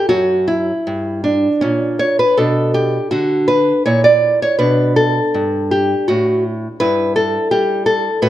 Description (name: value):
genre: classical, baroque-style dance for nylon-string guitar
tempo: 81 BPM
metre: 3/4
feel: uneven beats, rubato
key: B minor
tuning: A4 = 442 Hz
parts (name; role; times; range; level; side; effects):
- nylon-string guitar; solo; 0.0-8.3 s; F#2 to D5; -13 LUFS; equal; none
room: moderate recital hall reverb, RT60 1.3 s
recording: dark, warm production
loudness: -13 LUFS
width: side -13 dB against mid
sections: 0.0-8.3 A section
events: none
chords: 0.1 F#7; 2.4 Bm; 3.9 A#dim; 4.6 Bm; 6.8 Em/G